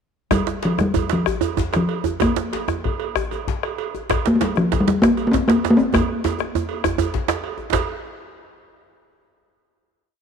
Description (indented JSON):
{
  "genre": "west african traditional, West African drum ensemble",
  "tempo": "125-141 BPM (dotted quarters)",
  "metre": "12/8",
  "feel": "straight",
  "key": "unclear",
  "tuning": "A4 = 440 Hz",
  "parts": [
    { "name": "talking drum", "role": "melody", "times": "0.3-6.4 s", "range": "F3 to C4", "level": "-19 LUFS", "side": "left 1 dB", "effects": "none" },
    { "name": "bombo", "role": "percussion", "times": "0.3-7.9 s", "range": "none", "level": "-26 LUFS", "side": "left 5 dB", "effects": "none" },
    { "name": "cowbell", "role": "percussion", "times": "0.3-7.9 s", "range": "none", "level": "-29 LUFS", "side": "right 11 dB", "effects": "none" },
    { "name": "djembe", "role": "percussion", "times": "0.3-7.9 s", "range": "none", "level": "-30 LUFS", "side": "left 5 dB", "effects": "none" },
    { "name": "djembe", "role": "percussion", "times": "0.3-7.9 s", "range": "none", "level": "-24 LUFS", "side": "right 8 dB", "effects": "none" }
  ],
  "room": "moderate plate reverb, RT60 2.9 s",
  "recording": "1960s-style stereo",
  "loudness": "-18 LUFS",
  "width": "side -6 dB against mid",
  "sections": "0.3-7.7 A section; 7.7-9.5 final hit",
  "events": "speeding up 0.3-9.5; drum fill 5.9-7.7",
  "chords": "none"
}